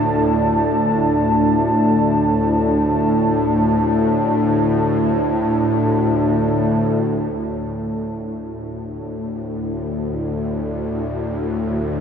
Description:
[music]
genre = dark ambient drone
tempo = free time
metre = none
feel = none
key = unclear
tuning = A4 = 444 Hz
[part]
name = dark analog pad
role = sustained chords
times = 0.0-12.0 s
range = A3 to A5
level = -20 LUFS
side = right 1 dB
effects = chorus
[part]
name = bowed-like drone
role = drone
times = 0.0-12.0 s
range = D2 to A2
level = -19 LUFS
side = left 1 dB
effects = built-in reverb
[sound]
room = wet huge ambient reverb, RT60 8.1 s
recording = none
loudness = -16 LUFS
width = side -7 dB against mid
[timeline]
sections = 0.0-7.3 A section; 7.3-12.0 B section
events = fade-in on analog synth pad 7.3-12.0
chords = 0.0 D5

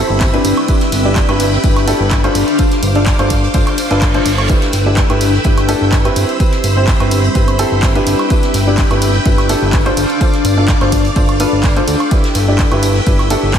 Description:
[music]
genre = piano house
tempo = 126 BPM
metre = 4/4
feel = swing 54% on 16ths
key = G mixolydian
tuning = A4 = 439 Hz
[part]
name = string machine, violins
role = sustained chords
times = 0.0-13.6 s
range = B4 to E6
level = -21 LUFS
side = equal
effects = ensemble chorus, sidechain pumping
[part]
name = clear upright piano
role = riff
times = 0.0-13.6 s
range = C4 to D5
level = -17 LUFS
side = left 1 dB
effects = sidechain pumping, tape echo
[part]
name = fat analog bass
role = bass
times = 0.0-13.6 s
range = G1 to D2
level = -16 LUFS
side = equal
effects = sidechain pumping
[part]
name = granular cloud pad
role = texture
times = 0.0-13.6 s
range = C4 to D6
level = -21 LUFS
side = left 1 dB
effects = built-in reverb, sidechain pumping
[part]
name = electronic kick drum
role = drums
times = 0.2-13.6 s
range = none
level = -14 LUFS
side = equal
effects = none
[part]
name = punchy analog drum machine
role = drums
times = 0.2-13.6 s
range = handclaps, hi-hat, ride cymbal, woodblock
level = -22 LUFS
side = right 2 dB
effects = none
[part]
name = vintage brush drum kit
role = drums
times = 0.2-13.6 s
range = hi-hat, snare drum, tambourine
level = -29 LUFS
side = equal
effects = sidechain pumping on hats, high-pass filter on hats, high-pass filter on snare, sidechain pumping on perc, high-pass filter on perc, high-pass filter on room
[part]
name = reverse cymbal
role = sound effects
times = 3.7-4.5 s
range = none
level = -25 LUFS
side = right 4 dB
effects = none
[sound]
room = light reverb, small room ambience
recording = none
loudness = -10 LUFS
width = side -8 dB against mid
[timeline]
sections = 0.0-13.6 A section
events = reverse cymbal 3.7-4.5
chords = 0.0 G6; 2.4 Dm7/G; 4.5 G6; 10.0 Dm7/G; 12.1 G6

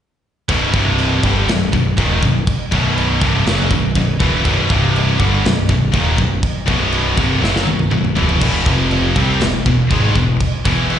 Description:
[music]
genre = heavy metal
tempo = 121 BPM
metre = 4/4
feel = straight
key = unclear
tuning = A4 = 440 Hz
[part]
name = heavy high-gain guitar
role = riff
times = 0.5-11.0 s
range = B1 to C4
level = -20 LUFS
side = left 10 dB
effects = distortion, slapback echo
[part]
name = heavy high-gain guitar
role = riff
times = 0.5-11.0 s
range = B1 to C4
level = -22 LUFS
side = right 1 dB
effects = distortion, slapback echo
[part]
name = scooped high-gain guitar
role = riff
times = 0.5-11.0 s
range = B1 to C4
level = -21 LUFS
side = right 8 dB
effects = distortion
[part]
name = modern bright picked electric bass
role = bass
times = 0.5-11.0 s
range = B0 to C2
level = -18 LUFS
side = equal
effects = none
[part]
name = tight metal drum kit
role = drums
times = 0.5-11.0 s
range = china cymbal, crash cymbal, kick drum, snare drum, toms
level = -20 LUFS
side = equal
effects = none
[sound]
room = little or no reverb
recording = live gig heard through the venue's PA, recital hall reverb, nothing above 10.8 kHz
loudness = -13 LUFS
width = side -9 dB against mid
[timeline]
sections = 0.5-11.0 A section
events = drum fill 7.4-8.4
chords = 0.5 B5; 0.7 C5; 1.2 B; 4.7 C5; 5.2 B; 8.4 E5; 8.7 F5; 9.2 E5

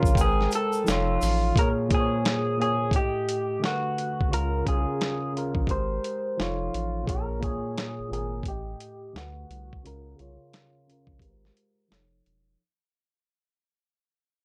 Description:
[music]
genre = lo-fi hip hop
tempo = 87 BPM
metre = 4/4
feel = swing 62% on 16ths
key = Bb dorian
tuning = A4 = 438 Hz
[part]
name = electric guitar through a small old amp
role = melody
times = 0.0-12.2 s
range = F4 to C5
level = -32 LUFS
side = equal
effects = low-pass filter
[part]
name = tine electric piano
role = accompaniment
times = 0.0-12.6 s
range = A2 to G5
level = -32 LUFS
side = equal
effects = overdrive, low-pass filter
[part]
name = round analog bass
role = bass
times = 0.0-12.6 s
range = E1 to D2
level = -32 LUFS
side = equal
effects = none
[part]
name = dusty soul sampler-style drum kit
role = drums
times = 0.0-12.5 s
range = hi-hat, kick drum, snare drum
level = -29 LUFS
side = equal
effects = none
[part]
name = tube shaker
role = percussion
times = 0.1-1.4 s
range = none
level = -44 LUFS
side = equal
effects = none
[sound]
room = little or no reverb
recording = dry, gritty hardware recording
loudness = -26 LUFS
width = mono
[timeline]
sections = 0.0-1.6 A section; 1.6-12.6 B section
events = fade-out 1.6-12.6; filter sweep 1.6-12.6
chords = 0.2 Abmaj9; 0.9 F7b13; 1.6 Bbm7; 2.9 Gsus2/A; 3.6 D6; 4.3 Db6; 5.7 Abmaj9; 6.4 F7b13; 7.1 Bbm7; 8.5 Gsus2/A; 9.1 D6; 9.8 Db6; 11.2 Abmaj9; 11.9 F7b13

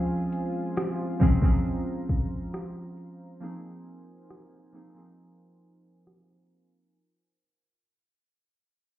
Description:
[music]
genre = contemporary R&B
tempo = 68 BPM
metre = 4/4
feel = straight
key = Ab major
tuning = A4 = 440 Hz
[part]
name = warm analog keys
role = accompaniment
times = 0.0-7.0 s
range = F3 to F5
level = -30 LUFS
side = equal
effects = chorus
[part]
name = chorused pulse-width pad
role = sustained chords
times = 0.0-6.9 s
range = F4 to Bb5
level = -40 LUFS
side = left 1 dB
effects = none
[part]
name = smooth R&B drum kit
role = drums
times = 0.3-6.3 s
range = hi-hat, kick drum, rim click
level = -25 LUFS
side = equal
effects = vintage 12-bit sampler grit
[sound]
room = digital ambience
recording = heard muffled through a wall, club reverb, EQ, low-pass filter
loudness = -25 LUFS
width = side -14 dB against mid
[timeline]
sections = 0.0-6.9 A section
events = fade-out 0.0-6.9; filter sweep 0.0-6.9; break 3.4-6.9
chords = 0.0 Dbmaj7; 3.4 Ab69

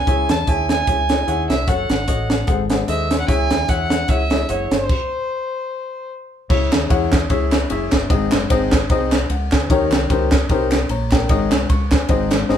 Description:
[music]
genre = uptempo gospel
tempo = 150 BPM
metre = 4/4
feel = swing 55% on 8ths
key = C# harmonic minor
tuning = A4 = 436 Hz
[part]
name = warm fiddle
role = melody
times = 0.0-6.1 s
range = B#4 to A5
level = -22 LUFS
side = right 2 dB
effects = none
[part]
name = fingered electric bass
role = bass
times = 0.0-12.6 s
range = F#1 to E2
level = -23 LUFS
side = right 1 dB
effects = none
[part]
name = warm upright piano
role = accompaniment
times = 0.1-12.6 s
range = G#2 to C#6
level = -22 LUFS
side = left 5 dB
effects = none
[part]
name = crisp fusion drum kit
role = drums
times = 0.1-12.6 s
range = crash cymbal, hi-hat, kick drum, ride cymbal, snare drum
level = -18 LUFS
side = right 1 dB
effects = none
[part]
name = group handclap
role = percussion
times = 6.7-12.4 s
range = none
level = -30 LUFS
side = right 2 dB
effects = none
[sound]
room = moderate large studio reverb, RT60 0.8 s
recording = band playing live in one room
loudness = -16 LUFS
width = side -9 dB against mid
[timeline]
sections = 0.0-6.5 A section; 6.5-12.6 B section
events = stop 4.9-6.5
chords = 0.1 C#m; 1.7 F#m; 2.5 G#7b9; 3.3 C#m; 4.9 N.C.; 6.5 C#m; 8.1 G#; 9.7 D#7; 11.3 G#sus4

